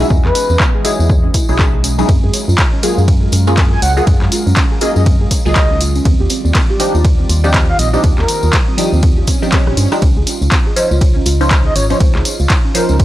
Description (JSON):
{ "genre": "deep house", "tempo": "121 BPM", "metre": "4/4", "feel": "swing 60% on 16ths", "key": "unclear", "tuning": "A4 = 440 Hz", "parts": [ { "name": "breathy flute-like synth lead", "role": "melody", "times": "0.0-0.6, 3.7-8.5, 11.7-13.0 s", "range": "Bb4 to Ab5", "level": "-20 LUFS", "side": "equal", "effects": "wide subtle chorus, analog delay" }, { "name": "warbly tape-like pad", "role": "sustained chords", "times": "0.0-13.0 s", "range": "Eb3 to Eb6", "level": "-26 LUFS", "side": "right 1 dB", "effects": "chorus, built-in reverb, sidechain pumping" }, { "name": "soft round pluck", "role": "arpeggios", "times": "0.0-13.0 s", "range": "B3 to Db5", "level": "-23 LUFS", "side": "right 3 dB", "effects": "ensemble chorus, sidechain pumping, tape echo" }, { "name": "filtered dub chord stab", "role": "stabs", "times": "0.0-13.0 s", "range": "F3 to C5", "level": "-19 LUFS", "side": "equal", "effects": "phaser, sidechain pumping, tape echo" }, { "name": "organ-like FM bass", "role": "bass", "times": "0.0-13.0 s", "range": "Ab1 to G2", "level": "-14 LUFS", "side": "equal", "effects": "transformer saturation, sidechain pumping" }, { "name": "tambourine", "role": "percussion", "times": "0.0-13.0 s", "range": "none", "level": "-26 LUFS", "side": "left 3 dB", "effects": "none" }, { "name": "electronic kick drum", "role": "drums", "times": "0.1-13.0 s", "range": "none", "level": "-13 LUFS", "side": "equal", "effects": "none" }, { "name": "punchy analog drum machine", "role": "drums", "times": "0.3-13.0 s", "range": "handclaps, hi-hat, ride cymbal, rim click", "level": "-19 LUFS", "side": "equal", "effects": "none" }, { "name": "swell", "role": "sound effects", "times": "9.2-10.0 s", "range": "none", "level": "-24 LUFS", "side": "right 4 dB", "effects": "none" } ], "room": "little or no reverb", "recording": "dry, gritty hardware recording", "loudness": "-10 LUFS", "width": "side -15 dB against mid", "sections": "0.0-13.0 A section", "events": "swell 9.2-10.0; drum fill 9.5-10.0", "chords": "0.0 Emaj9; 2.1 Gbmaj9; 6.1 Ebmaj9; 10.0 Dbmaj9" }